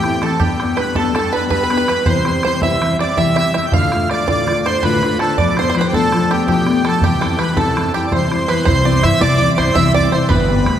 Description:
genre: celtic folk, Celtic slip jig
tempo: 109 BPM (dotted quarters)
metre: 9/8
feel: straight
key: C major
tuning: A4 = 440 Hz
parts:
  - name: accordion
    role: melody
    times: 0.0-10.8 s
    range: G4 to G5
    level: -18 LUFS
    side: right 1 dB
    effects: none
  - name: bluegrass banjo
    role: second line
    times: 0.0-10.8 s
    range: G4 to F5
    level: -21 LUFS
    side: right 4 dB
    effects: none
  - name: fingerpicked steel-string acoustic guitar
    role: accompaniment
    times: 0.0-10.8 s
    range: D2 to G4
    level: -18 LUFS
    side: left 3 dB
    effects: none
  - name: bodhran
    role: percussion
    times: 0.0-10.7 s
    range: none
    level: -22 LUFS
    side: right 1 dB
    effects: none
  - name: upright bass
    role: bass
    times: 8.7-10.7 s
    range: G1 to C3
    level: -17 LUFS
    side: equal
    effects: none
room: wet church reverb, RT60 3.1 s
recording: recorded in a church or concert hall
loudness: -13 LUFS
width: side -10 dB against mid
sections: 0.0-8.7 A section; 8.7-10.8 B section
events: none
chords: 0.4 G; 2.1 C; 3.7 Dm; 5.4 Bm7b5; 7.0 C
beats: | 0.40 0.96 1.51 | 2.06 2.62 3.17 | 3.72 4.27 4.83 | 5.38 5.93 6.48 | 7.03 7.57 8.12 | 8.67 9.21 9.76 | 10.30

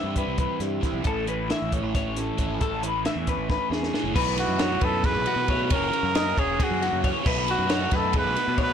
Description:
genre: math rock and midwest emo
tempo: 271 BPM (eighths)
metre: 7/8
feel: straight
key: unclear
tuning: A4 = 441 Hz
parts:
  - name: twelve-string electric guitar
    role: accompaniment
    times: 0.0-5.7 s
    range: A2 to G4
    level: -35 LUFS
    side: right 9 dB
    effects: none
  - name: twelve-string electric guitar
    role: arpeggios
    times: 0.0-8.7 s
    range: F#4 to E5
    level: -29 LUFS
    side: left 7 dB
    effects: none
  - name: crunchy overdriven guitar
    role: riff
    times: 0.0-8.7 s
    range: F#2 to E4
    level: -30 LUFS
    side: right 1 dB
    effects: phaser
  - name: growling fingered electric bass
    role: bass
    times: 0.0-8.7 s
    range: E1 to B2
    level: -31 LUFS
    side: equal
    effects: overdrive
  - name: compact cocktail drum kit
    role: drums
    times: 0.2-8.7 s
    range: crash cymbal, hi-hat, kick drum, ride cymbal, snare drum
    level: -27 LUFS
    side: equal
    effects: none
  - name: warm trumpet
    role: melody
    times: 4.4-8.7 s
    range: F#4 to B4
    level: -26 LUFS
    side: right 3 dB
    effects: none
room: light reverb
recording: blown-out, overdriven recording, overdrive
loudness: -22 LUFS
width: side -8 dB against mid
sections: 0.0-4.2 A section; 4.2-8.7 B section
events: drum fill 3.5-4.2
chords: 0.0 Cmaj7; 1.1 A; 2.6 Aadd9; 4.2 B7sus4; 5.7 F#7; 7.3 B5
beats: 0.16 0.38 0.61 0.83 | 1.05 1.27 1.49 1.72 1.94 2.16 2.38 | 2.60 2.83 3.05 3.27 3.49 3.71 3.94 | 4.16 4.38 4.60 4.82 5.04 5.27 5.49 | 5.71 5.93 6.15 6.37 6.59 6.81 7.04 | 7.26 7.48 7.70 7.92 8.14 8.36 8.58

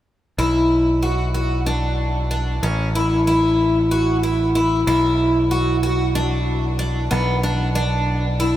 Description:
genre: progressive instrumental, progressive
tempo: 187 BPM (eighths)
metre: 7/8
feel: straight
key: B minor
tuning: A4 = 440 Hz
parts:
  - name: picked twelve-string acoustic guitar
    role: arpeggios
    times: 0.4-8.6 s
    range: B3 to F#4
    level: -19 LUFS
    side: equal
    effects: none
  - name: modern bright picked electric bass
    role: bass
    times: 0.4-8.6 s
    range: A1 to B1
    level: -21 LUFS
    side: equal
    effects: none
room: wet huge ambient reverb, RT60 8.7 s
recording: dreamy mix soaked in reverb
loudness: -17 LUFS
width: side -13 dB against mid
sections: 0.4-8.6 A section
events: none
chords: 0.4 Bm; 2.6 A5; 4.9 Bm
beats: | 0.39 0.71 1.03 1.35 1.67 1.99 2.31 | 2.63 2.95 3.27 3.59 3.91 4.23 4.55 | 4.88 5.20 5.52 5.84 6.16 6.48 6.80 | 7.12 7.44 7.76 8.08 8.40

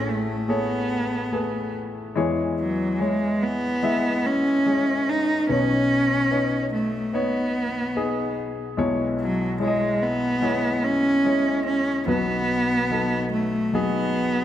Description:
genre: pop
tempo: 72 BPM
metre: 4/4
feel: straight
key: E major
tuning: A4 = 441 Hz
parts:
  - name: rich cello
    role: melody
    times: 0.0-14.4 s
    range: F#3 to D#4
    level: -23 LUFS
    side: right 1 dB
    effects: none
  - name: clear grand piano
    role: accompaniment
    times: 0.0-14.4 s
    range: A1 to E5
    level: -25 LUFS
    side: left 2 dB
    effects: none
room: wet recital hall reverb, RT60 1.8 s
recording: none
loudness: -21 LUFS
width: side -11 dB against mid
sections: 0.0-14.4 A section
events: none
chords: 0.0 Amaj7; 2.2 E6; 5.5 Badd9; 8.8 E6/B; 12.1 B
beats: 0.49 1.32 | 2.16 3.00 3.84 4.67 | 5.50 6.32 7.14 7.96 | 8.78 9.61 10.43 11.25 | 12.08 12.91 13.74

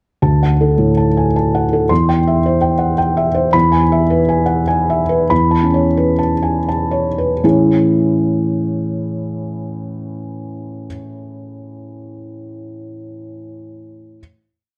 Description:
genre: neoclassical minimalist piano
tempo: 78-111 BPM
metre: 3/4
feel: rubato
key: A major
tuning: A4 = 440 Hz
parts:
  - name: felt-muted upright piano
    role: solo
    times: 0.2-14.2 s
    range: D2 to C6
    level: -17 LUFS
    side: equal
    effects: none
room: moderate recital hall reverb, RT60 1.4 s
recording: dark, warm production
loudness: -15 LUFS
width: mono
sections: 0.2-7.4 A section; 7.4-11.9 final chord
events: slowing down 2.7-7.4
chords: 0.2 D; 1.9 C/E; 3.5 E; 5.3 Aadd9/E; 7.4 Amaj7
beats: | 0.23 0.79 1.34 | 1.90 2.44 2.99 | 3.54 4.10 4.68 | 5.30 5.97 6.67 | 7.42 8.18 8.94 | 9.69 10.44 11.19

